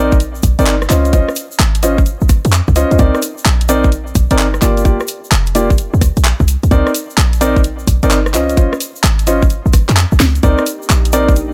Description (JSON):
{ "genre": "UK garage, two-step garage", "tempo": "129 BPM", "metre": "4/4", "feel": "swing 66% on 16ths", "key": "C minor", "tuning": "A4 = 439 Hz", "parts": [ { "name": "dark baby grand piano", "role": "stabs", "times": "0.0-11.3 s", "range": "Bb3 to Eb5", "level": "-18 LUFS", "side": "equal", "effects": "digital delay" }, { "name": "short 808-style bass", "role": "bass", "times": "0.0-11.5 s", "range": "F1 to F2", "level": "-16 LUFS", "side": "equal", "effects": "tube saturation" }, { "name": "electronic kick drum", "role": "drums", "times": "0.1-11.3 s", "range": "none", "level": "-14 LUFS", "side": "equal", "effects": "overdrive" }, { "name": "egg shaker", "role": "percussion", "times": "0.1-11.5 s", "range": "none", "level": "-30 LUFS", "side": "equal", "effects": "none" }, { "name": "garage drum kit", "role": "drums", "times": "0.2-11.5 s", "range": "handclaps, hi-hat, rim click, snare drum", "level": "-20 LUFS", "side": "equal", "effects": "overdrive" }, { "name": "ethereal airy pad", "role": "sustained chords", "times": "10.7-11.5 s", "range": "Bb3 to G4", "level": "-28 LUFS", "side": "equal", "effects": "ensemble chorus, built-in reverb, sidechain pumping" } ], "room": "digital ambience", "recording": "none", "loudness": "-13 LUFS", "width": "mono", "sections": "0.0-11.5 A section", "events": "kick drops out 10.0-10.4; drum fill 10.2", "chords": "0.0 Cm9; 0.9 Dbmaj9; 3.0 Cm9; 4.6 Gm7; 6.5 Cm9; 8.3 Dbmaj9; 10.4 Cm9" }